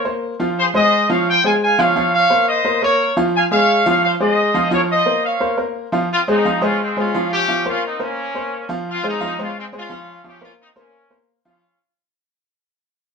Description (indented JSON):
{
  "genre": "latin",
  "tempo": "174 BPM",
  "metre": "4/4",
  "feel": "straight",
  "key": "F minor",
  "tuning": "A4 = 439 Hz",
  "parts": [
    { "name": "bright trumpet section", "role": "melody", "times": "0.0-11.8 s", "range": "Ab3 to Ab5", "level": "-17 LUFS", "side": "equal", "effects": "none" },
    { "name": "bright upright piano", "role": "accompaniment", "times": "0.0-11.6 s", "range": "F3 to F5", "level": "-19 LUFS", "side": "equal", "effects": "none" }
  ],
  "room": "wet studio reverb, RT60 0.7 s",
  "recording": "band playing live in one room",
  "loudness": "-15 LUFS",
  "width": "side -5 dB against mid",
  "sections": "0.0-6.1 A section; 6.1-11.6 B section",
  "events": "fade-out 6.1-11.6",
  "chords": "0.0 Bbsus2; 0.6 Fm; 2.0 Bbmadd9; 3.3 Fm; 4.7 Bbmadd9; 6.1 Fm; 7.5 Bbmadd9; 8.9 Fm; 10.2 Bbmadd9",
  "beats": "0.23 | 0.57 0.92 1.26 1.61 | 1.96 2.30 2.65 2.99 | 3.34 3.68 4.03 4.37 | 4.72 5.07 5.41 5.76 | 6.10 6.45 6.79 7.14 | 7.48 7.83 8.17 8.52 | 8.86 9.21 9.55 9.89 | 10.24 10.58 10.93 11.27"
}